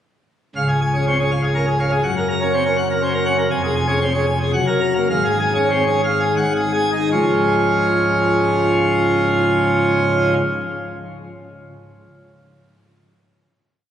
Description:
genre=classical, organ toccata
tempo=77-123 BPM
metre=3/4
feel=straight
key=Db major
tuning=A4 = 441 Hz
part: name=pipe organ, plenum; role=solo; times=0.6-10.3 s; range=Db1 to Bb5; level=-16 LUFS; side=equal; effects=none
room=wet church reverb, RT60 2.9 s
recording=recorded on a phone in the room, club reverb, compression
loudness=-16 LUFS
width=side -10 dB against mid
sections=0.6-7.1 A section; 7.1-11.8 final chord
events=slowing down 2.8-7.1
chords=0.6 Db; 2.0 Gb; 3.5 Db/F; 4.5 Gb; 5.1 Db/Ab; 6.4 Ab5; 7.1 Db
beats=| 0.56 1.05 1.55 | 2.04 2.53 3.02 | 3.51 4.01 4.54 | 5.10 5.70 6.37 | 7.12 7.89 8.66 | 9.44 10.22

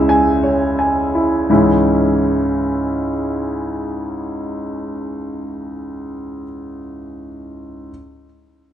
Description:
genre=neoclassical minimalist piano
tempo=86 BPM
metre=3/4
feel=rubato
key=C# minor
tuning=A4 = 440 Hz
part: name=clear concert grand piano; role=solo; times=0.0-7.9 s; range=C#2 to G#5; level=-17 LUFS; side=equal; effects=tape echo
room=moderate large studio reverb, RT60 1.2 s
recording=band playing live in one room, nothing above 10.3 kHz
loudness=-16 LUFS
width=side -10 dB against mid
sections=0.0-1.5 A section; 1.5-5.7 B section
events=slowing down 0.0-1.5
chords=0.0 C#m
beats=0.08 0.78 | 1.49 2.18 2.88 | 3.58 4.27 4.97

